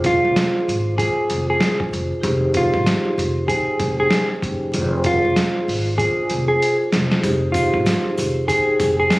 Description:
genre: hip hop, boom-bap hip-hop.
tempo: 96 BPM.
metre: 4/4.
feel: swing 61% on 16ths.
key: F dorian.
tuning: A4 = 441 Hz.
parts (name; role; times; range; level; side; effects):
vibraphone with soft mallets; accompaniment; 0.0-9.2 s; D4 to G5; -23 LUFS; equal; cassette tape, high-pass filter, low-pass filter.
upright bass; bass; 0.0-9.1 s; F1 to Ab1; -24 LUFS; equal; none.
trip hop sampler-style drum kit; drums; 0.0-9.2 s; hi-hat, kick drum, snare drum; -22 LUFS; equal; none.
mellow electric guitar; melody; 0.1-9.2 s; F4 to Ab4; -20 LUFS; equal; high-pass filter, low-pass filter.
sleigh bells; percussion; 7.2-9.2 s; none; -37 LUFS; left 2 dB; none.
room: little or no reverb.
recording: recorded on a phone in the room, studio reverb, vinyl crackle, compression.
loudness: -17 LUFS.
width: side -20 dB against mid.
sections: 0.0-9.2 A section.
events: drum fill 6.0-7.2.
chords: 0.0 Fm6; 2.2 Fm7; 4.7 Fm6; 7.2 Fm7.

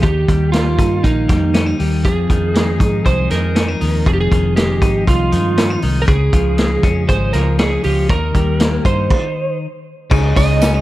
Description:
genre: jangly indie pop.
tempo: 119 BPM.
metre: 4/4.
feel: straight.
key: unclear.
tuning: A4 = 439 Hz.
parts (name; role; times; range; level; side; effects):
lightly driven lead guitar; melody; 0.0-10.8 s; Eb4 to Eb5; -20 LUFS; right 3 dB; none.
twelve-string electric guitar; arpeggios; 0.0-10.8 s; F2 to Eb4; -20 LUFS; left 3 dB; none.
vintage muted fingered electric bass; bass; 0.0-10.8 s; F1 to Ab2; -18 LUFS; equal; none.
vintage drum kit; drums; 0.0-10.7 s; crash cymbal, hi-hat, kick drum, snare drum; -17 LUFS; equal; none.
picked steel-string acoustic guitar; accompaniment; 10.1-10.8 s; Ab3 to Ab4; -24 LUFS; right 6 dB; none.
warm upright piano; accompaniment; 10.1-10.8 s; Db4 to Ab4; -24 LUFS; left 8 dB; none.
tambourine; percussion; 10.1-10.7 s; none; -34 LUFS; right 8 dB; none.
room: light reverb, small room ambience.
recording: none.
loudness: -13 LUFS.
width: side -16 dB against mid.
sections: 0.0-10.1 A section.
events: stop 9.1-10.1.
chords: 0.0 Eb; 2.0 Fm7; 6.1 Db; 8.1 Eb; 9.1 N.C.; 10.1 Dbsus2.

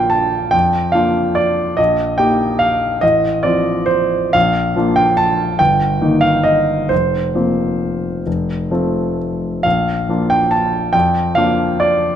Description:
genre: classical, piano waltz.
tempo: 121-154 BPM.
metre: 3/4.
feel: rubato.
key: Bb major.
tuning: A4 = 440 Hz.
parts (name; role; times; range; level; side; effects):
clear baby grand piano; solo; 0.0-12.2 s; F1 to A5; -13 LUFS; equal; none.
room: moderate recital hall reverb, RT60 1.6 s.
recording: close, detailed microphones.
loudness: -13 LUFS.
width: side -9 dB against mid.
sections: 0.0-12.2 A section.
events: none.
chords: 0.0 Bb; 1.8 Eb/Bb; 3.0 F7/A; 4.3 Bb; 5.6 Eb/G; 6.9 Fsus4; 8.3 F; 9.6 Bb.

